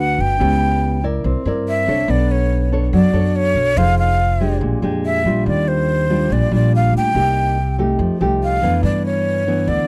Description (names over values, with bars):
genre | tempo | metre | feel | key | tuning
bossa nova | 142 BPM | 4/4 | straight | unclear | A4 = 440 Hz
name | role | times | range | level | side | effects
breathy jazz flute | melody | 0.0-9.9 s | C5 to G5 | -22 LUFS | equal | none
nylon-string guitar | accompaniment | 0.0-9.9 s | G2 to D5 | -22 LUFS | equal | none
upright bass | bass | 0.0-9.8 s | F1 to G2 | -21 LUFS | equal | none
room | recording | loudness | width
little or no reverb | dry, close 1970s-style studio recording | -17 LUFS | mono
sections
0.0-9.9 A section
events
none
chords
0.4 C#m7b5; 1.2 C9; 2.1 Bm9; 3.8 Fm7; 4.6 Bb6; 5.5 Ebmaj9; 7.1 Cm7; 8.0 F9; 8.8 G6